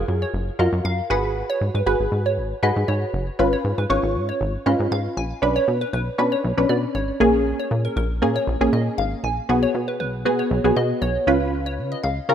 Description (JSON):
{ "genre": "dance-pop", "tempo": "118 BPM", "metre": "4/4", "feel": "straight", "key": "unclear", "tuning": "A4 = 439 Hz", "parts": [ { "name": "punchy chord stab", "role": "accompaniment", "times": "0.0-12.3 s", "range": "A#3 to C#5", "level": "-22 LUFS", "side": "equal", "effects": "chorus, phaser" }, { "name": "plucky analog bass", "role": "bass", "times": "0.0-12.3 s", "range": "F#1 to C#3", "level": "-24 LUFS", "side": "equal", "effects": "none" }, { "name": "glassy wavetable pluck", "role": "melody", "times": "0.2-12.1 s", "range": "A#4 to G#5", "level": "-27 LUFS", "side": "equal", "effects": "chorus, phaser" } ], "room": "moderate lush hall reverb, RT60 2.5 s", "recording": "rough home demo mix", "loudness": "-19 LUFS", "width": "side -9 dB against mid", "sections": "0.0-5.4 A section; 5.4-12.3 B section", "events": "none", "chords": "0.0 F#maj7; 1.1 G#m7; 3.4 C#7/G#; 5.4 Bmadd9; 7.2 A#m7; 9.5 G#m7/B; 11.3 C#7" }